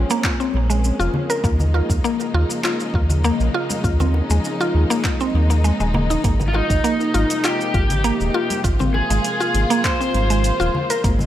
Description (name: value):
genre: organic downtempo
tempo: 100 BPM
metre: 4/4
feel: straight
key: unclear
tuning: A4 = 440 Hz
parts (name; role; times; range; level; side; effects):
- warm studio string section; sustained chords; 0.0-11.3 s; C3 to F4; -26 LUFS; left 1 dB; sidechain pumping
- mallet-like synth pluck; arpeggios; 0.0-11.2 s; Ab3 to Bb4; -22 LUFS; equal; chorus, digital delay
- round analog bass; bass; 0.0-11.3 s; Eb1 to Eb2; -18 LUFS; equal; sidechain pumping
- deep house drum kit; drums; 0.1-11.3 s; handclaps, hi-hat, shaker; -28 LUFS; equal; small room reverb
- congas and bongos; percussion; 0.1-11.3 s; none; -28 LUFS; left 1 dB; none
- electronic kick drum; drums; 0.2-11.2 s; none; -22 LUFS; equal; small room reverb
- overdriven slide guitar; melody; 6.5-11.0 s; Eb4 to C5; -22 LUFS; equal; digital delay
room: light reverb, digital ambience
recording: none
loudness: -17 LUFS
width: side -12 dB against mid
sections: 0.0-11.3 A section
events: none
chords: 0.0 Bbm9; 1.4 Eb9sus4; 6.2 Ab69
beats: 0.24 0.84 | 1.44 2.04 2.64 3.24 | 3.84 4.44 5.04 5.64 | 6.24 6.84 7.44 8.04 | 8.64 9.24 9.84 10.44 | 11.04